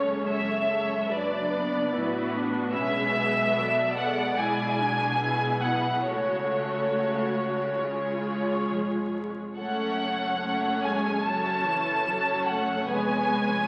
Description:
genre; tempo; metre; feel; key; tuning
classical, slow romantic movement for string orchestra; 67-76 BPM; 4/4; rubato; F# minor; A4 = 442 Hz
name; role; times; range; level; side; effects
warm symphonic violin section; melody; 0.0-13.7 s; C#5 to A5; -29 LUFS; equal; none
warm symphonic violin section; second line; 0.0-13.7 s; F#4 to D5; -36 LUFS; equal; none
warm symphonic viola section; accompaniment; 0.0-13.7 s; E3 to F#4; -32 LUFS; equal; none
bright symphonic cello section; bass; 0.0-13.7 s; E#2 to C#3; -39 LUFS; equal; none
warm symphonic double bass section; bass; 0.0-13.7 s; E#1 to C#2; -43 LUFS; equal; none
room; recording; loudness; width
wet scoring stage reverb, RT60 1.6 s; very old 78 rpm record, vinyl crackle; -27 LUFS; mono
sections
0.0-13.7 A section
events
none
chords
0.0 F#m; 1.1 Bm/F#; 2.8 Bm7; 4.4 G#dim/B; 6.1 F#m/C#; 7.8 C#; 9.6 F#m; 12.9 C#7/E#

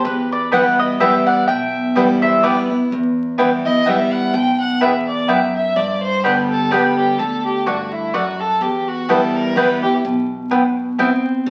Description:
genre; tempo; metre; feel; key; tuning
bluegrass; 126 BPM; 3/4; swing 56% on 8ths; E minor; A4 = 440 Hz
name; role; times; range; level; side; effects
mandolin; melody; 0.0-2.6 s; B4 to G5; -20 LUFS; equal; none
clear fiddle; second line; 0.0-9.9 s; E4 to G5; -23 LUFS; equal; none
picked steel-string acoustic guitar; accompaniment; 0.0-11.5 s; E2 to G4; -21 LUFS; equal; none
upright bass; bass; 0.0-11.5 s; B1 to G2; -37 LUFS; equal; none
mandolin; stabs; 0.5-11.1 s; A3 to G5; -21 LUFS; equal; none
room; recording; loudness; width
wet studio reverb, RT60 0.9 s; very old 78 rpm record, vinyl crackle; -17 LUFS; mono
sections
0.0-2.9 A section; 2.9-11.5 B section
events
fiddle solo 2.9-11.5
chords
0.1 Em; 5.8 G; 7.2 D; 8.6 Em

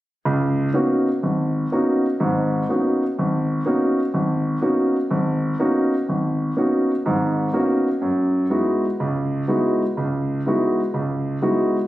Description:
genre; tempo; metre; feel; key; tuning
jazz; 124 BPM; 4/4; swing 66% on 8ths; unclear; A4 = 440 Hz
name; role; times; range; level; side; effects
warm concert grand piano; solo; 0.3-11.8 s; Ab1 to Gb4; -18 LUFS; equal; none
room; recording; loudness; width
moderate studio reverb, RT60 1.0 s; recorded on a phone in the room, studio reverb, compression; -18 LUFS; side -15 dB against mid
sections
0.2-11.9 A section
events
none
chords
0.2 Db13sus4; 8.0 Gb13sus4

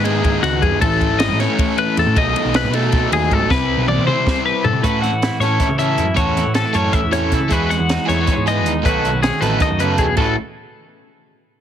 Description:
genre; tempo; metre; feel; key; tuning
math rock and midwest emo; 314 BPM (eighths); 7/8; straight; A lydian; A4 = 438 Hz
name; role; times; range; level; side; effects
twelve-string electric guitar; arpeggios; 0.0-10.4 s; F#4 to F#5; -20 LUFS; left 6 dB; plate reverb
overdriven electric guitar; riff; 0.0-10.3 s; G#2 to A4; -20 LUFS; right 1 dB; none
hollow-body short-scale picked electric bass; bass; 0.0-10.4 s; G#1 to C#3; -21 LUFS; equal; none
compact cocktail drum kit; drums; 0.1-10.3 s; crash cymbal, hi-hat, kick drum, ride cymbal, snare drum, toms; -21 LUFS; equal; none
twelve-string electric guitar; accompaniment; 4.8-10.4 s; A2 to B4; -22 LUFS; right 6 dB; none
room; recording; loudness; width
light reverb; heavily compressed radio sound, multiband compression; -14 LUFS; side -9 dB against mid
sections
0.0-4.8 A section; 4.8-10.2 B section; 10.2-11.5 C section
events
drum fill 3.5-4.8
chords
0.0 G#m7; 0.8 Amaj7; 2.2 B7; 3.5 Cmaj7; 4.8 A6; 7.5 Emaj9; 8.8 B13; 10.2 A69

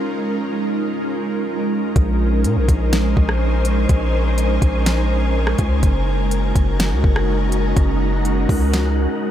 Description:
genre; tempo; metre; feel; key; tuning
hip hop, atmospheric cloud-rap; 124 BPM; 4/4; half-time; unclear; A4 = 439 Hz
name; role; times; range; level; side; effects
ethereal airy pad; sustained chords; 0.0-9.3 s; Ab3 to C5; -21 LUFS; right 1 dB; ensemble chorus, built-in reverb
long sustained 808-style bass; bass; 2.0-9.1 s; Gb1 to Bb2; -19 LUFS; equal; none
smooth R&B drum kit; drums; 2.0-8.8 s; hi-hat, kick drum, rim click, snare drum; -18 LUFS; equal; none
wind-like tuned noise texture; texture; 2.5-9.3 s; Db4 to Ab5; -29 LUFS; left 1 dB; built-in reverb
room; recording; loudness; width
light reverb; none; -16 LUFS; side -11 dB against mid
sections
0.0-9.3 A section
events
none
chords
0.0 Eb9sus4; 2.0 Bbm11; 5.8 Gb69

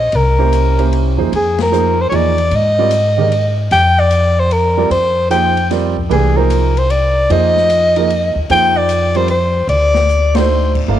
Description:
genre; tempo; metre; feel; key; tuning
modal jazz; 150 BPM; 3/4; swing 66% on 8ths; F dorian; A4 = 440 Hz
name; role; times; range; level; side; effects
breathy soprano saxophone; melody; 0.0-10.8 s; Ab4 to G5; -14 LUFS; left 1 dB; none
upright bass; bass; 0.0-11.0 s; G1 to Ab2; -16 LUFS; left 1 dB; tube saturation
open jazz drum kit; drums; 0.1-10.8 s; crash cymbal, hi-hat, kick drum, ride cymbal, snare drum; -28 LUFS; left 8 dB; none
warm baby grand piano; accompaniment; 0.4-11.0 s; Eb3 to F5; -19 LUFS; right 9 dB; none
room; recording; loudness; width
light reverb, studio reverb; 1960s-style stereo with parts hard left and right; -11 LUFS; side -11 dB against mid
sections
0.0-1.3 A section; 1.3-10.9 B section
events
band accent 1.5, 10.3; drum fill 10.1-10.5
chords
0.1 C7b9; 1.3 Fm11; 9.7 D7b9

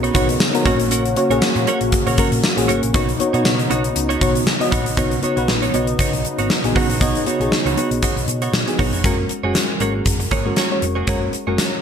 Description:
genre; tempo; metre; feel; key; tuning
1980s-style pop; 118 BPM; 4/4; swing 55% on 16ths; unclear; A4 = 435 Hz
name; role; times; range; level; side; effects
mellow FM electric piano; accompaniment; 0.0-11.8 s; G#3 to D#5; -21 LUFS; left 2 dB; chorus
warm analog pad; sustained chords; 0.0-9.0 s; C#3 to F#4; -25 LUFS; equal; chorus
direct-recorded clean electric guitar; riff; 0.0-11.8 s; A#3 to C#5; -25 LUFS; right 6 dB; wide subtle chorus, digital delay
hollow-body short-scale picked electric bass; bass; 0.0-11.6 s; E#1 to B2; -24 LUFS; equal; none
gated 80s drum kit; drums; 0.0-11.7 s; hi-hat, kick drum, snare drum, tambourine; -20 LUFS; equal; none
room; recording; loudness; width
moderate plate reverb, RT60 1.2 s, small room ambience; bright 1980s-style digital production; -16 LUFS; side -7 dB against mid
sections
0.0-5.0 A section; 5.0-9.0 B section; 9.0-11.8 C section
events
none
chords
0.0 Badd9; 0.7 F#/A#; 2.9 Badd9; 9.0 F#add9

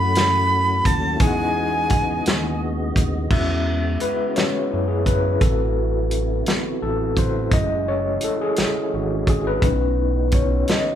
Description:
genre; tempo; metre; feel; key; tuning
slow six-eight R&B; 57 BPM (dotted quarters); 6/8; straight; E major; A4 = 442 Hz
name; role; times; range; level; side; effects
breathy bright jazz flute; melody; 0.0-2.6 s; G#5 to B5; -21 LUFS; right 1 dB; none
overdriven tine electric piano; accompaniment; 0.0-11.0 s; F#3 to F#5; -24 LUFS; left 3 dB; fast tremolo
tonewheel organ; sustained chords; 0.0-11.0 s; C3 to D#5; -28 LUFS; right 2 dB; chorus vibrato, slow rotary speaker
smooth gliding synth bass; bass; 0.0-10.8 s; F#1 to F#2; -24 LUFS; right 1 dB; none
warm soul drum kit; drums; 0.2-10.9 s; crash cymbal, hi-hat, kick drum, snare drum; -21 LUFS; equal; none
room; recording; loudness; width
moderate large studio reverb, RT60 0.9 s; band playing live in one room; -18 LUFS; side -10 dB against mid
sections
0.0-3.3 A section; 3.3-11.0 B section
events
tine electric piano solo 3.3-11.0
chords
0.0 F#m7; 1.2 Emaj9; 3.3 E69; 5.4 Am6; 7.5 F#m9; 9.6 B9

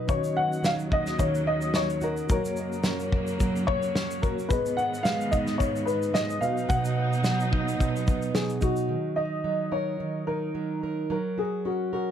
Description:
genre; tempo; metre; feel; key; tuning
acoustic pop; 109 BPM; 4/4; swing 55% on 16ths; unclear; A4 = 440 Hz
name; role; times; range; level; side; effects
dark upright piano; melody; 0.0-12.1 s; F#4 to F#5; -29 LUFS; left 2 dB; plate reverb, digital delay
fingerpicked plugged-in steel-string acoustic guitar; accompaniment; 0.0-12.1 s; G#2 to B4; -30 LUFS; right 4 dB; none
bright reed electric piano; accompaniment; 0.1-8.9 s; A#3 to D#5; -38 LUFS; left 5 dB; fast tremolo
rich studio string section; sustained chords; 0.1-8.9 s; D#2 to D#4; -34 LUFS; left 1 dB; none
loose indie drum kit; drums; 0.1-8.9 s; kick drum, shaker, snare drum; -28 LUFS; equal; none
room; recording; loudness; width
moderate studio reverb, RT60 0.5 s; none; -24 LUFS; side -9 dB against mid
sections
0.1-8.9 A section; 8.9-12.1 B section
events
none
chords
0.1 D#m7; 2.3 F#; 4.5 G#m; 6.4 B; 8.9 D#m7; 11.1 F#

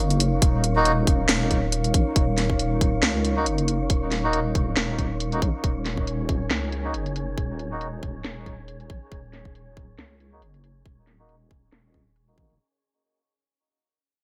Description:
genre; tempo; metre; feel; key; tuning
deep dubstep; 138 BPM; 4/4; swing 55% on 16ths, half-time; Eb minor; A4 = 440 Hz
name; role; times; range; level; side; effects
dark analog pad; sustained chords; 0.0-12.6 s; Eb4 to F5; -33 LUFS; equal; chorus
deep soft wobble bass; bass; 0.0-12.6 s; Eb1 to Db2; -29 LUFS; equal; chorus
wind-like tuned noise texture; texture; 0.0-12.6 s; Db4 to Db5; -38 LUFS; equal; built-in reverb
garage drum kit; drums; 0.1-12.6 s; hi-hat, snare drum; -28 LUFS; equal; low-pass filter on hats, low-pass filter on snare, low-pass filter on room, gated reverb
electronic kick drum; drums; 0.4-12.5 s; none; -26 LUFS; equal; none
melodica; stabs; 0.8-12.6 s; Bb3 to Gb4; -30 LUFS; equal; low-pass filter, dub echo
room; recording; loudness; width
light reverb, digital ambience; bright 1980s-style digital production; -24 LUFS; mono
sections
0.0-12.6 A section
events
fade-out 0.0-12.6; filter sweep on drum 0.0-12.6; filter sweep on melodica 0.0-12.6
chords
0.0 Ebm

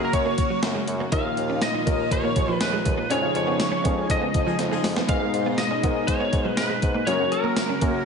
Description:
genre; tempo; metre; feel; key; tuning
1980s-style pop; 121 BPM; 4/4; straight; G# dorian; A4 = 440 Hz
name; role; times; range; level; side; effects
lightly driven lead guitar; melody; 0.0-8.1 s; A#4 to E#5; -26 LUFS; left 1 dB; analog chorus, ping-pong delay
warm baby grand piano; accompaniment; 0.0-8.1 s; G#2 to C#5; -29 LUFS; left 2 dB; analog chorus
string machine, violins; sustained chords; 0.0-8.1 s; A#2 to F#4; -29 LUFS; equal; ensemble chorus
warm bassoon; bass; 0.0-8.0 s; D#2 to G#2; -30 LUFS; equal; none
gated 80s digital drum machine; drums; 0.1-7.9 s; hi-hat, kick drum, snare drum, tambourine; -26 LUFS; equal; gated reverb, gated reverb snare
direct-recorded clean electric guitar; riff; 0.3-7.9 s; E#3 to D#4; -31 LUFS; right 4 dB; ensemble chorus, ping-pong delay
warm horn section; stabs; 4.5-4.9 s; E#3 to G#4; -32 LUFS; left 3 dB; none
room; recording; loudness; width
wet plate reverb, RT60 1.1 s; dreamy mix soaked in reverb, nothing above 10.6 kHz; -21 LUFS; side -5 dB against mid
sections
0.0-8.1 A section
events
band accent 3.1-5.1; drum fill 4.6-5.1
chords
0.0 F#; 1.1 D#sus2; 3.1 C#add9/E#; 5.1 G#madd9; 7.1 F#

